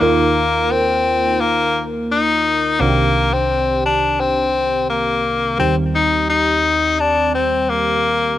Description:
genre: pop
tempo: 86 BPM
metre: 4/4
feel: straight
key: unclear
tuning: A4 = 439 Hz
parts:
  - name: edgy tenor saxophone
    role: melody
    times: 0.0-8.4 s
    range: Bb3 to Eb4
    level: -16 LUFS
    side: left 3 dB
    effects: none
  - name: FM electric piano with soft pad layer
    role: accompaniment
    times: 0.0-8.4 s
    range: C2 to Bb4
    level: -20 LUFS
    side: right 2 dB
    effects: chorus, phaser, cassette tape
room: wet booth ambience, RT60 0.2 s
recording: home recording on cassette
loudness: -14 LUFS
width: side -13 dB against mid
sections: 0.0-5.6 A section; 5.6-8.4 B section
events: none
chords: 0.0 Ebsus2; 2.8 Cmadd9; 5.6 Cm/Eb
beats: | 0.01 0.71 1.41 2.11 | 2.81 3.50 4.20 4.90 | 5.59 6.29 6.99 7.69

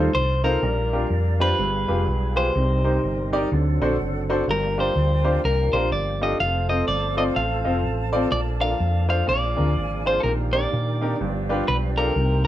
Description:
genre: uptempo gospel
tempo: 125 BPM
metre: 4/4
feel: swing 61% on 8ths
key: Bb major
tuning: A4 = 439 Hz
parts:
  - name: clear baby grand piano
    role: accompaniment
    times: 0.0-12.5 s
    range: G2 to Eb5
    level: -26 LUFS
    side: left 1 dB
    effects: none
  - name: flute section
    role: sustained chords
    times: 0.0-12.5 s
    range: Eb4 to A5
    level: -36 LUFS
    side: right 2 dB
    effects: none
  - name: percussive tonewheel organ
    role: sustained chords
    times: 0.0-12.5 s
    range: Eb3 to Bb4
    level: -31 LUFS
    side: right 3 dB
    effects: slow rotary speaker, overdrive, chorus vibrato
  - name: hollow-body short-scale fingered electric bass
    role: bass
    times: 0.0-12.5 s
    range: F1 to Bb2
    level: -24 LUFS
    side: equal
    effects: none
  - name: clean electric guitar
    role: melody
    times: 0.1-12.5 s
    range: A4 to F5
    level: -24 LUFS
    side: equal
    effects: none
room: moderate stone room reverb, RT60 1.1 s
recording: band playing live in one room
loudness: -20 LUFS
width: side -13 dB against mid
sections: 0.6-12.5 A section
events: none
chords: 0.0 F7; 0.6 Bb6; 1.6 G7b9; 2.6 Cm7; 3.5 D7; 4.5 Gm7; 6.4 F; 8.3 Bbmaj7; 9.3 Bb7; 10.2 Ebmaj7/Bb; 11.2 G7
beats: 0.14 | 0.62 1.11 1.59 2.07 | 2.56 3.04 3.52 4.00 | 4.48 4.96 5.44 5.92 | 6.40 6.88 7.36 7.84 | 8.32 8.80 9.28 9.76 | 10.24 10.72 11.20 11.68 | 12.16

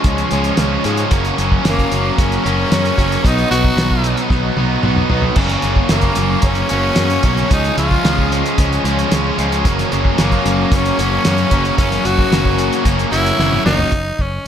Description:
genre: classic rock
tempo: 112 BPM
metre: 4/4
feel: straight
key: F# major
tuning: A4 = 440 Hz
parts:
  - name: raspy tenor saxophone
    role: melody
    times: 0.0-14.5 s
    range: A#3 to F#4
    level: -20 LUFS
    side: left 1 dB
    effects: plate reverb
  - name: tonewheel organ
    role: sustained chords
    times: 0.0-13.9 s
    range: G#3 to C#5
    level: -28 LUFS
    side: left 1 dB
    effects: none
  - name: biting overdriven guitar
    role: riff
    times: 0.0-13.9 s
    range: F#2 to D#4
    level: -20 LUFS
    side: right 1 dB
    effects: none
  - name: overdriven electric guitar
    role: riff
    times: 0.0-13.9 s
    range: F#2 to D#4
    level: -20 LUFS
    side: left 1 dB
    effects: spring reverb
  - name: fingered electric bass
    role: bass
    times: 0.0-14.4 s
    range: F#1 to G#2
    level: -20 LUFS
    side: equal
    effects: none
  - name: cloth-damped thuddy drum kit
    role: drums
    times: 0.0-14.3 s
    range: crash cymbal, hi-hat, kick drum, snare drum, toms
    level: -18 LUFS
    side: equal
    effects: none
room: light reverb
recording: none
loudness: -13 LUFS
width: side -9 dB against mid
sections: 0.0-13.9 A section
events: drum fill 4.3-5.4, 13.4-13.9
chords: 0.0 C#; 1.1 F#; 3.2 Badd9; 5.4 F#; 7.5 C#; 9.6 F#; 13.9 F#5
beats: 0.04 0.57 | 1.11 1.64 2.17 2.71 | 3.24 3.77 4.31 4.84 | 5.37 5.91 6.44 6.97 | 7.51 8.04 8.58 9.11 | 9.64 10.18 10.71 11.25 | 11.78 12.31 12.85 13.39 | 13.92 14.46

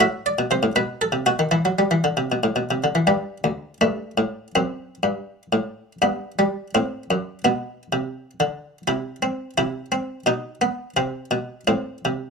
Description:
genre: classical, baroque-style suite movement for harpsichord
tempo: 75-86 BPM (dotted quarters)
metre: 6/8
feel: rubato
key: E minor, G major from 3.1 s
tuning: A4 = 440 Hz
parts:
  - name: buff-stop harpsichord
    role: solo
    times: 0.0-12.3 s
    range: D2 to E5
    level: -20 LUFS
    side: equal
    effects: none
room: moderate small room reverb, RT60 0.5 s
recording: minimal, uncompressed stereo recording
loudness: -21 LUFS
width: side -5 dB against mid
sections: 0.0-3.1 A section; 3.1-12.3 A section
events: none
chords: 0.0 F#dim/A; 0.8 B; 1.5 E5; 3.1 G5; 3.8 Gsus2; 4.5 F#dim; 6.0 G; 6.7 F#dim; 7.4 Bm; 8.9 C; 10.3 B; 11.0 N.C.; 11.7 Am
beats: | 0.01 0.75 | 1.52 2.29 | 3.08 3.81 | 4.55 5.28 | 6.02 6.74 | 7.45 8.15 | 8.87 9.57 | 10.26 10.97 | 11.68

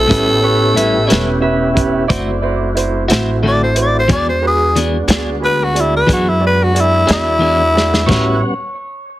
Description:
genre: slow blues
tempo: 60 BPM (dotted quarters)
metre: 12/8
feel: straight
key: unclear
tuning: A4 = 436 Hz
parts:
  - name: growling tenor saxophone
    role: melody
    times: 0.0-8.4 s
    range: E4 to D5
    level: -14 LUFS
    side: left 1 dB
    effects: none
  - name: warm grand piano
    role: accompaniment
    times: 0.0-8.4 s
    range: C#4 to D5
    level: -20 LUFS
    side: right 5 dB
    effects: none
  - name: tonewheel organ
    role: sustained chords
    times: 0.0-8.5 s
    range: G3 to F#5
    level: -22 LUFS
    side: equal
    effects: slow rotary speaker, chorus vibrato
  - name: upright bass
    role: bass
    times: 0.0-8.4 s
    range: E1 to F#2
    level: -18 LUFS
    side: equal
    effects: none
  - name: clean electric guitar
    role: accompaniment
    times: 0.1-8.4 s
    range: A2 to G#4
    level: -19 LUFS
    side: left 3 dB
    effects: harmonic tremolo
  - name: warm soul drum kit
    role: drums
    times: 0.1-8.3 s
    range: crash cymbal, hi-hat, kick drum, snare drum, toms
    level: -16 LUFS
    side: equal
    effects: none
  - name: electric guitar through a small old amp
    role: second line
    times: 0.4-8.4 s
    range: C#5 to E5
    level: -22 LUFS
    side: equal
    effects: tape echo
room: light reverb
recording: heavily compressed radio sound, multiband compression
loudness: -12 LUFS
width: side -15 dB against mid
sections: 0.0-8.1 A section; 8.1-9.2 B section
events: drum fill 7.8-8.1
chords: 0.1 A7; 2.1 D7; 4.1 E7; 8.1 A13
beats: | 0.10 1.10 2.10 3.09 | 4.09 5.09 6.09 7.08 | 8.08

